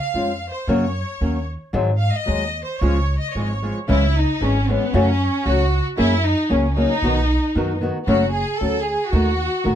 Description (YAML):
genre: mexican folk, mariachi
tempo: 114 BPM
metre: 2/4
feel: straight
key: Db major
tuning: A4 = 440 Hz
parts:
  - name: clear studio violin section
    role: melody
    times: 0.0-9.8 s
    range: B3 to F5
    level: -23 LUFS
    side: equal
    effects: plate reverb
  - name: nylon-string guitar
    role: accompaniment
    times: 0.1-9.8 s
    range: Gb2 to Ab4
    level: -20 LUFS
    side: left 1 dB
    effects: none
  - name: upright bass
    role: bass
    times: 0.1-9.8 s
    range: F#1 to Ab2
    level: -21 LUFS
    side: equal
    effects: none
room: light reverb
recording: dark, warm production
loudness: -18 LUFS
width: side -10 dB against mid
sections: 0.0-3.9 A section; 3.9-9.8 B section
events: none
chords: 0.0 Db; 0.7 Gb; 1.7 Ab7; 2.8 Db; 3.9 C#m; 4.9 F#m; 6.0 F#add9; 7.0 B; 8.1 F#m; 9.1 D#dim